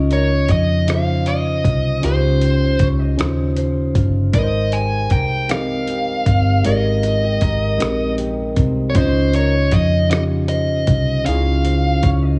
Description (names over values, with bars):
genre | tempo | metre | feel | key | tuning
slow six-eight R&B | 52 BPM (dotted quarters) | 6/8 | straight | unclear | A4 = 440 Hz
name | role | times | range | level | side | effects
electric guitar at the edge of break-up | second line | 0.0-12.4 s | Ab3 to Eb5 | -29 LUFS | equal | none
tine electric piano | accompaniment | 0.0-12.4 s | Db3 to Eb5 | -24 LUFS | equal | none
vintage muted fingered electric bass | bass | 0.0-12.4 s | G1 to F2 | -21 LUFS | equal | none
dark smooth lead guitar | melody | 0.1-12.1 s | C5 to Ab5 | -24 LUFS | equal | overdrive, slapback echo
dusty soul sampler-style drum kit | drums | 0.1-12.2 s | hi-hat, kick drum, rim click | -22 LUFS | equal | none
room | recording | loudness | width
light reverb | small room ambience | -17 LUFS | mono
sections
0.0-12.4 A section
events
none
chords
0.0 Dbmaj9; 4.3 Abmaj9; 9.0 Dbmaj9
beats
0.88 | 2.03 3.19 | 4.34 5.50 | 6.65 7.80 | 8.96 10.11 | 11.26